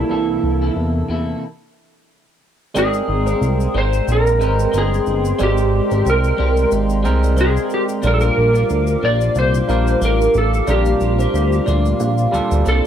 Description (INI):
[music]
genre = indie pop, bedroom pop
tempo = 91 BPM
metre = 4/4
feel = swing 55% on 16ths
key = unclear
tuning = A4 = 439 Hz
[part]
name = electric slide guitar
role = melody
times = 0.0-12.9 s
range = E4 to D5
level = -19 LUFS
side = equal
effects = ensemble chorus, slapback echo
[part]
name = barky tine electric piano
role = accompaniment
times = 0.0-12.9 s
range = E3 to G5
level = -25 LUFS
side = right 6 dB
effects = overdrive
[part]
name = electric guitar at the edge of break-up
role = accompaniment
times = 0.0-12.9 s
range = Bb2 to Bb4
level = -26 LUFS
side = left 5 dB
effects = lush chorus, warbly pitch drift
[part]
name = chorused synth bass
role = bass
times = 0.0-12.8 s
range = G1 to E2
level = -18 LUFS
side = equal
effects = none
[part]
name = kalimba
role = second line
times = 2.8-12.9 s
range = C5 to F5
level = -26 LUFS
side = right 4 dB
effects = lush chorus, slapback echo
[part]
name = hollow soft pad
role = sustained chords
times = 2.8-12.9 s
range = Ab3 to D6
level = -29 LUFS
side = equal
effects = chorus
[part]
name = egg shaker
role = percussion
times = 2.8-12.8 s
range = none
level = -40 LUFS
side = left 14 dB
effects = none
[sound]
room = little or no reverb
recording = dry, close 1970s-style studio recording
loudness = -14 LUFS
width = side -9 dB against mid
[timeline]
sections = 0.0-2.8 A section; 2.8-12.9 B section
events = stop 1.4-2.8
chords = 0.1 C13; 2.8 Abmaj9; 8.0 Bb6